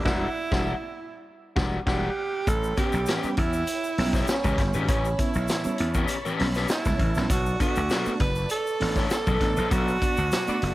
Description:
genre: funk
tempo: 100 BPM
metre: 4/4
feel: straight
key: unclear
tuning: A4 = 441 Hz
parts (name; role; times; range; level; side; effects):
- reed electric piano; stabs; 0.0-10.7 s; A2 to F#4; -32 LUFS; right 2 dB; overdrive, fast tremolo
- slap bass; bass; 0.0-10.7 s; E1 to E2; -27 LUFS; equal; none
- breathy tenor saxophone; melody; 0.1-10.7 s; C#4 to B4; -29 LUFS; right 3 dB; analog delay
- crunchy overdriven guitar; accompaniment; 0.1-9.9 s; C#4 to F#5; -32 LUFS; left 5 dB; none
- vintage drum kit; drums; 0.1-10.7 s; crash cymbal, hi-hat, kick drum, snare drum; -28 LUFS; equal; none
- string machine, violins; sustained chords; 2.5-10.7 s; C#5 to C#6; -37 LUFS; left 1 dB; ensemble chorus
- tube shaker; percussion; 2.5-10.6 s; none; -43 LUFS; left 4 dB; none
- clear horn section; second line; 10.5-10.6 s; B3 to D5; -34 LUFS; left 1 dB; none
room: small room ambience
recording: none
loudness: -23 LUFS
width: side -17 dB against mid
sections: 0.0-2.5 A section; 2.5-10.7 B section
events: band accent 0.1-2.5, 9.7-10.7; silent gap 1.3-2.5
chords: 0.0 Em9; 2.5 A9; 7.3 Bm7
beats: | 0.06 0.66 1.26 1.87 | 2.47 3.07 3.67 4.28 | 4.88 5.49 6.09 6.69 | 7.29 7.90 8.50 9.11 | 9.71 10.32

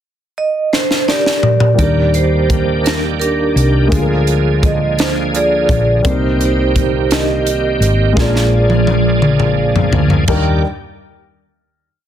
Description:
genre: slow gospel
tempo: 56 BPM (dotted quarters)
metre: 6/8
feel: straight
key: Eb major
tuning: A4 = 438 Hz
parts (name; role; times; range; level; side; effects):
- vibraphone with medium mallets; melody; 0.4-10.6 s; D4 to G5; -17 LUFS; right 2 dB; none
- crisp fusion drum kit; drums; 0.7-10.4 s; crash cymbal, hi-hat, kick drum, snare drum, toms; -16 LUFS; equal; none
- dark upright piano; accompaniment; 1.7-10.6 s; Eb2 to Bb4; -21 LUFS; left 3 dB; none
- bright tonewheel organ; sustained chords; 1.8-10.6 s; D3 to D5; -21 LUFS; right 3 dB; slow rotary speaker, overdrive, chorus vibrato
- hollow-body short-scale fingered electric bass; bass; 1.8-10.6 s; Ab1 to Eb2; -16 LUFS; equal; none
room: small room ambience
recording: dense, heavily limited modern master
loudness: -11 LUFS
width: side -10 dB against mid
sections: 0.0-1.8 pickup bar; 1.8-10.3 verse; 10.3-12.1 final chord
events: drum fill 0.7-1.8, 8.2-10.3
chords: 0.0 Gmadd11; 1.8 Ebmaj7; 3.9 Bb7/D; 6.0 Cm7; 8.2 Bb7; 10.3 Ebmaj7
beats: 0.73 | 1.79 2.85 | 3.92 4.98 | 6.04 7.11 | 8.17 9.23 | 10.29

